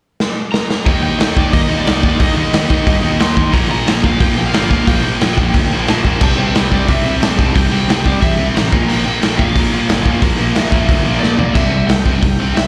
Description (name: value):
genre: punk rock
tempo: 180 BPM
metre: 4/4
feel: straight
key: unclear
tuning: A4 = 441 Hz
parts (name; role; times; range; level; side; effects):
- raw garage drum kit; drums; 0.2-12.6 s; crash cymbal, hi-hat, kick drum, snare drum, toms; -18 LUFS; equal; none
- cranked stack guitar; melody; 0.5-12.7 s; D5 to C6; -25 LUFS; equal; overdrive
- cranked stack guitar; riff; 0.9-11.5 s; Bb2 to Eb4; -26 LUFS; equal; overdrive, slapback echo
- sludgy distorted guitar; riff; 0.9-12.7 s; Bb2 to Eb4; -20 LUFS; equal; overdrive
- fuzz picked electric bass; bass; 0.9-12.7 s; G1 to Eb3; -22 LUFS; equal; overdrive
room: small room ambience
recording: live gig heard through the venue's PA, club reverb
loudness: -14 LUFS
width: mono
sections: 0.9-11.6 A section; 11.6-12.7 B section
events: drum fill 0.2-0.9, 11.2-11.6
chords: 0.0 N.C.; 0.9 Eb5; 3.5 Bb5; 6.2 C5; 8.7 Bb5; 11.6 C